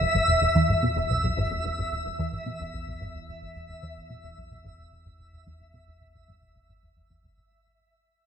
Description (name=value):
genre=ambient, sequencer-driven space music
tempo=110 BPM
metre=4/4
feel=straight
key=unclear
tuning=A4 = 440 Hz
part: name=plucky analog bass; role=riff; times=0.0-7.4 s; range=E1 to B2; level=-27 LUFS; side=equal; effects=ensemble chorus, ping-pong delay
part: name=analog drone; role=bass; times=0.1-7.5 s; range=E2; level=-37 LUFS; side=equal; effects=chorus
part: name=twinkling granular texture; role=texture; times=0.0-7.5 s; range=E5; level=-27 LUFS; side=equal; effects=built-in reverb
room=wet spring reverb, RT60 2.8 s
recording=echo-heavy mix, nothing above 10.4 kHz, faint mains hum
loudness=-23 LUFS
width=side -8 dB against mid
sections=0.0-7.5 A section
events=fade-out 0.0-7.5; filter sweep on analog synth bass 0.0-7.5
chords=0.0 E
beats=0.42 | 0.96 1.51 2.05 2.60 | 3.14 3.69 4.24 4.78 | 5.33 5.87 6.42 6.96